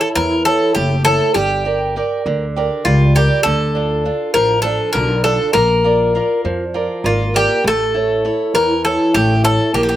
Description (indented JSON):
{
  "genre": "greek folk, Greek bouzouki band",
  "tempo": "200 BPM (eighths)",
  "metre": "7/8",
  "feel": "straight",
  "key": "A phrygian dominant",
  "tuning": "A4 = 441 Hz",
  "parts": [
    { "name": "Greek bouzouki", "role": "melody", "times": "0.0-10.0 s", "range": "F4 to Bb4", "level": "-16 LUFS", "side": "left 1 dB", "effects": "slapback echo" },
    { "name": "picked old ladder-braced acoustic guitar", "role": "accompaniment", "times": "0.0-10.0 s", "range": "D3 to D5", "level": "-19 LUFS", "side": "right 2 dB", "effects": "none" },
    { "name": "upright bass", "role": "bass", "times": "0.2-10.0 s", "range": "F#1 to F2", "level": "-19 LUFS", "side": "left 1 dB", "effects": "none" }
  ],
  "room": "light reverb",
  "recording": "recorded outdoors, with no room sound",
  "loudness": "-13 LUFS",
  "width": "side -12 dB against mid",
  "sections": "0.0-10.0 A section",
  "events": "none",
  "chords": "0.0 A; 1.4 Gm; 3.5 Dm; 5.5 Bb; 7.6 A"
}